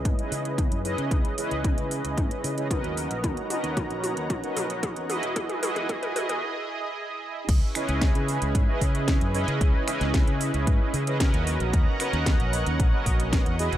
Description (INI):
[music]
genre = nu-disco, nu disco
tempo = 113 BPM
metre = 4/4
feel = straight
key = C# dorian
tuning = A4 = 440 Hz
[part]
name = mellow synth brass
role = accompaniment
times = 0.0-13.8 s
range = C#4 to D#5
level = -30 LUFS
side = right 1 dB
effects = chorus, sidechain pumping, tape echo
[part]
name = lush unison pad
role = sustained chords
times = 0.0-13.8 s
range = C#4 to A#5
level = -33 LUFS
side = right 1 dB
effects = chorus, sidechain pumping
[part]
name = fingered electric bass with an envelope filter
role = bass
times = 0.0-13.8 s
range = E1 to C#3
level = -29 LUFS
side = equal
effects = none
[part]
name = electronic kick drum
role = drums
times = 0.1-13.4 s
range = none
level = -24 LUFS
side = equal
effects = none
[part]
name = house drum kit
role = drums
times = 0.1-13.8 s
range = crash cymbal, finger snaps, hi-hat, snare drum, toms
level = -32 LUFS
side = equal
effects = none
[sound]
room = light reverb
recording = high-pass filter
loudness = -23 LUFS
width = side -12 dB against mid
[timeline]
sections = 0.0-7.5 A section; 7.5-13.8 B section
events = build-up 0.0-7.5; drum fill 0.0-6.4; filter sweep on analog synth pad 0.0-7.5; filter sweep 0.0-7.5; break 6.4-7.5; drop 7.5-13.8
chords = 0.0 C#m7; 3.0 Bmaj9; 5.1 Emaj9; 7.5 C#m7; 11.5 Bmaj9